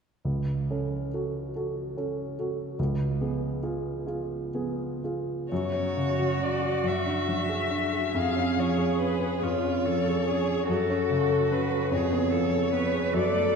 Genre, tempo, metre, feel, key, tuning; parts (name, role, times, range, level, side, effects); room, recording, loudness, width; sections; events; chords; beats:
classical, slow romantic movement for piano trio; 39-50 BPM (dotted quarters); 6/8; rubato; F# minor; A4 = 443 Hz
warm baby grand piano; accompaniment; 0.2-13.6 s; C#2 to A4; -27 LUFS; right 1 dB
rich violin; melody; 5.5-13.6 s; A4 to E#5; -29 LUFS; left 6 dB
rich cello; second line; 5.5-13.6 s; E#4 to B4; -31 LUFS; right 5 dB
wet church reverb, RT60 2.5 s; dark, warm production; -25 LUFS; side -5 dB against mid
0.2-5.5 A section; 5.5-13.6 B section
0.2 F#m/C#; 2.8 C#7; 5.5 F#5; 6.8 E9/F#; 8.2 C#/E#; 10.7 F#m; 11.9 C#7/E#
| 0.24 1.53 | 2.78 4.06 | 5.51 6.85 | 8.15 9.42 | 10.68 11.92 | 13.13